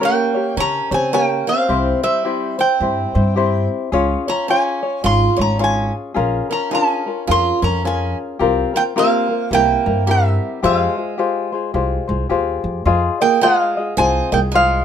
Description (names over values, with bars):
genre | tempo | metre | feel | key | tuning
Hawaiian | 108 BPM | 4/4 | swing 62% on 8ths | F minor | A4 = 440 Hz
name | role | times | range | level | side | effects
picked acoustic archtop guitar | second line | 0.0-14.8 s | G3 to F4 | -23 LUFS | right 6 dB | none
tenor ukulele | accompaniment | 0.0-14.8 s | C4 to Eb5 | -20 LUFS | left 5 dB | none
metal-body resonator slide guitar | melody | 0.1-14.8 s | E5 to C6 | -18 LUFS | right 2 dB | none
upright bass | bass | 0.6-14.8 s | Ab1 to Db3 | -20 LUFS | equal | none
room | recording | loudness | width
light reverb | minimal, uncompressed stereo recording | -15 LUFS | side -8 dB against mid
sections
0.0-12.9 A section; 12.9-14.8 A section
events
none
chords
0.0 Gdim; 1.7 C; 3.9 Db; 6.2 Bbm7; 8.4 C7sus4; 9.5 C7; 10.6 Fmadd9; 12.9 Fm7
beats
0.01 0.57 1.13 | 1.69 2.25 2.81 3.37 | 3.93 4.49 5.04 5.60 | 6.16 6.72 7.28 7.84 | 8.40 8.95 9.51 10.07 | 10.63 11.19 11.74 12.30 | 12.86 13.42 13.97 14.53